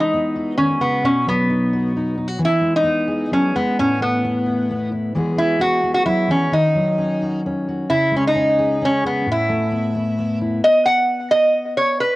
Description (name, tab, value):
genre	folk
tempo	132 BPM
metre	3/4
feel	straight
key	E major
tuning	A4 = 440 Hz
part	lap resonator guitar	melody	0.0-12.2 s	B3 to F#5	-17 LUFS	equal	cassette tape
part	fingerpicked steel-string acoustic guitar	accompaniment	0.0-12.0 s	A2 to G#4	-22 LUFS	left 1 dB	cassette tape
room	moderate booth ambience, RT60 0.2 s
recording	home recording on cassette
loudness	-16 LUFS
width	side -18 dB against mid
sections	0.0-10.6 A section; 10.6-12.2 B section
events	none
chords	0.0 Eadd9; 1.0 B; 2.4 E; 3.8 Asus2; 5.2 Eadd9; 6.5 D#m7; 7.9 C#5; 9.3 Asus2; 10.6 N.C.